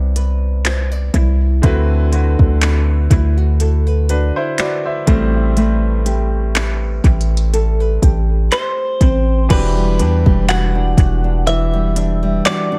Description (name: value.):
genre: contemporary R&B.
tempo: 61 BPM.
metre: 4/4.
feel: swing 54% on 16ths.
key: A dorian.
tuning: A4 = 441 Hz.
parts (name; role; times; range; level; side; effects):
bright grand piano; accompaniment; 0.0-12.8 s; A2 to E5; -27 LUFS; equal; analog delay.
flamenco guitar; arpeggios; 0.0-12.8 s; D3 to D5; -24 LUFS; equal; analog delay.
warm 808-style bass; bass; 0.0-12.4 s; E1 to E2; -18 LUFS; equal; none.
smooth R&B drum kit; drums; 0.2-12.7 s; crash cymbal, handclaps, hi-hat, kick drum; -18 LUFS; equal; none.
direct-recorded clean electric guitar; melody; 8.5-12.8 s; B4 to F#5; -23 LUFS; equal; lush chorus, analog delay.
room: little or no reverb.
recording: echo-heavy mix.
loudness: -15 LUFS.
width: mono.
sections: 0.0-9.5 A section; 9.5-12.8 B section.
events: none.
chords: 0.0 Cmaj9; 1.6 D13; 5.1 Am9; 9.5 Em9.